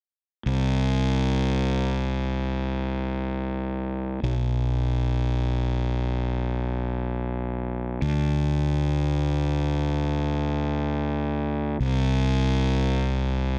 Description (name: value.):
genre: rock.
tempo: free time.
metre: none.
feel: none.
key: unclear.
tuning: A4 = 440 Hz.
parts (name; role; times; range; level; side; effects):
fuzz fingered electric bass; bass; 0.5-13.6 s; B1 to D2; -25 LUFS; equal; overdrive.
room: little or no reverb.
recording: none.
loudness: -26 LUFS.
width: mono.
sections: 0.5-13.6 A section.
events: none.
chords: none.